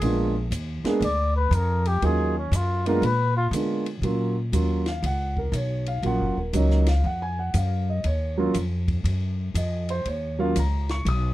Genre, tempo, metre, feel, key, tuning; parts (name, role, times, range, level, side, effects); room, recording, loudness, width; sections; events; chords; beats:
jazz, small-group swing and bop; 120 BPM; 4/4; swing 66% on 8ths; Eb minor; A4 = 443 Hz
trumpet with cup mute; melody; 0.0-3.5 s; Db4 to D5; -26 LUFS; left 2 dB
dark baby grand piano; accompaniment; 0.0-11.3 s; Gb3 to Eb6; -26 LUFS; right 2 dB
upright bass; bass; 0.0-11.3 s; Eb1 to D3; -24 LUFS; equal
compact cocktail drum kit; drums; 0.0-11.2 s; hi-hat, kick drum, ride cymbal, snare drum; -36 LUFS; left 1 dB
little or no reverb; dark, warm production; -22 LUFS; side -15 dB against mid
0.0-4.0 A section; 4.0-11.3 A section
muted trumpet solo 0.0-4.0
0.0 Bb7b9; 2.0 Ebm9; 3.0 Bb7b9; 4.0 Ebm9
| 0.02 0.52 1.02 1.52 | 2.02 2.52 3.03 3.53 | 4.03 4.53 5.04 5.54 | 6.04 6.54 7.04 7.54 | 8.05 8.55 9.05 9.55 | 10.05 10.55 11.06